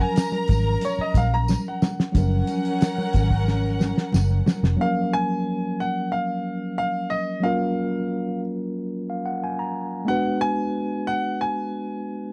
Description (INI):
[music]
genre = lush 1970s-style soul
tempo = 91 BPM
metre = 4/4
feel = straight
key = F# major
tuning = A4 = 444 Hz
[part]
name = clear grand piano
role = melody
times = 0.0-12.3 s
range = C#5 to A#5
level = -29 LUFS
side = equal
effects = none
[part]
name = warm studio violin section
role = second line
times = 0.0-4.8 s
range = C#4 to A#5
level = -32 LUFS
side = equal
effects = none
[part]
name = mellow tine electric piano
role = accompaniment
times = 0.0-12.3 s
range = E#3 to A#5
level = -29 LUFS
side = equal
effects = none
[part]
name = vintage muted fingered electric bass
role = bass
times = 0.0-4.8 s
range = E#1 to A#1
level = -24 LUFS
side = equal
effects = tube saturation
[part]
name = congas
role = percussion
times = 0.1-4.6 s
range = none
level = -32 LUFS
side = equal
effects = none
[part]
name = cloth-damped thuddy drum kit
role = drums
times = 0.2-4.8 s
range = hi-hat, kick drum, snare drum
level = -23 LUFS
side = equal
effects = none
[part]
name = tambourine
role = percussion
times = 0.2-4.6 s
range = none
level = -45 LUFS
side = equal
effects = none
[sound]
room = little or no reverb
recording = dry, close 1970s-style studio recording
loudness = -24 LUFS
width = mono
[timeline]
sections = 0.0-2.1 A section; 2.1-4.8 B section; 4.8-12.3 C section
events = grand piano solo 0.0-2.1; drum fill 1.5-2.1, 3.5-4.8; tine electric piano fill 8.8-10.1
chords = 0.0 F#maj7; 10.1 Bm6